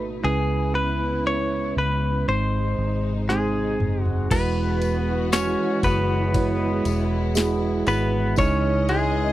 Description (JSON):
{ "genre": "pop ballad", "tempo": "59 BPM", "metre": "4/4", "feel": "straight", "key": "unclear", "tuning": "A4 = 440 Hz", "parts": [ { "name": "direct-recorded clean electric guitar", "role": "melody", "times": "0.0-9.3 s", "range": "G#3 to C#5", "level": "-26 LUFS", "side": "left 2 dB", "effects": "none" }, { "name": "mellow tine electric piano", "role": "accompaniment", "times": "0.0-9.3 s", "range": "G#2 to C#5", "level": "-26 LUFS", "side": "right 5 dB", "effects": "none" }, { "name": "warm studio string section", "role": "sustained chords", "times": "0.0-9.3 s", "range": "B2 to D#5", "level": "-31 LUFS", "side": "left 3 dB", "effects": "none" }, { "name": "vintage muted fingered electric bass", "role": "bass", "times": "0.0-9.3 s", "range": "E1 to C#2", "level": "-25 LUFS", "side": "left 1 dB", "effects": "none" }, { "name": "smooth R&B drum kit", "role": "drums", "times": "3.3-9.1 s", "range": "crash cymbal, kick drum, ride cymbal, snare drum, toms", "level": "-26 LUFS", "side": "left 1 dB", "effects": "none" }, { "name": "tambourine", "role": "percussion", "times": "4.3-8.6 s", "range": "none", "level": "-39 LUFS", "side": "left 13 dB", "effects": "none" } ], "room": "little or no reverb", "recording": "dry, close 1970s-style studio recording", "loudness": "-20 LUFS", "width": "side -14 dB against mid", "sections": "0.0-4.3 A section; 4.3-9.3 B section", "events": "drum fill 3.3-4.3", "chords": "0.2 C#m7; 2.3 G#; 4.3 Eadd9; 8.4 C#madd9" }